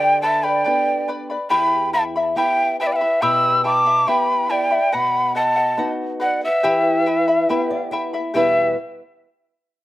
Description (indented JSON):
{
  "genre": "andean folk",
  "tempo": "70 BPM",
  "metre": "4/4",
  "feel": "straight",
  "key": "E minor",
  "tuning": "A4 = 442 Hz",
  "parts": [
    { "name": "breathy quena", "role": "melody", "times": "0.0-8.7 s", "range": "D5 to E6", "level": "-18 LUFS", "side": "equal", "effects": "none" },
    { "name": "breathy mellow polished pan flute", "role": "second line", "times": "0.0-8.8 s", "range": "B4 to B5", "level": "-26 LUFS", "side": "right 2 dB", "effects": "slapback echo" },
    { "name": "charango", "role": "accompaniment", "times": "0.0-8.7 s", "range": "E4 to B5", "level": "-23 LUFS", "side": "left 3 dB", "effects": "slapback echo" },
    { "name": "nylon-string guitar", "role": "accompaniment", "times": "0.0-8.8 s", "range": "E2 to E5", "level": "-26 LUFS", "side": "equal", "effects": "slapback echo" }
  ],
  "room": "light reverb",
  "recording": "recorded outdoors, with no room sound",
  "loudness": "-16 LUFS",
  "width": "side -16 dB against mid",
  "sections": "0.0-8.3 A section; 8.3-9.8 B section",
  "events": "nylon-string guitar fill 7.1-8.3",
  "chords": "0.0 G; 1.5 Em; 4.9 B; 6.6 Em"
}